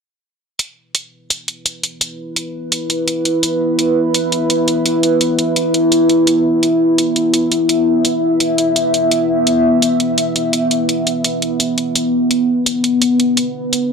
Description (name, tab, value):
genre	half-time drum and bass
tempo	169 BPM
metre	4/4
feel	swing 59% on 16ths, half-time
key	unclear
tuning	A4 = 440 Hz
part	deep dark ambient pad	sustained chords	2.3-13.9 s	B3 to E5	-14 LUFS	equal	chorus, built-in reverb, vintage 12-bit sampler grit
part	electronic hi-hat	drums	0.6-13.8 s	none	-18 LUFS	equal	small room reverb
room	moderate digital room reverb, RT60 1.3 s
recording	dry, gritty hardware recording, cassette tape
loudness	-13 LUFS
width	side -5 dB against mid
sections	0.6-13.9 A section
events	none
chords	0.6 E5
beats	| 0.59 0.95 1.30 1.66 | 2.01 2.37 2.72 3.08 | 3.43 3.79 4.14 4.50 | 4.85 5.21 5.56 5.92 | 6.27 6.63 6.98 7.34 | 7.69 8.05 8.40 8.76 | 9.11 9.47 9.82 10.18 | 10.53 10.89 11.24 11.60 | 11.95 12.31 12.66 13.02 | 13.37 13.73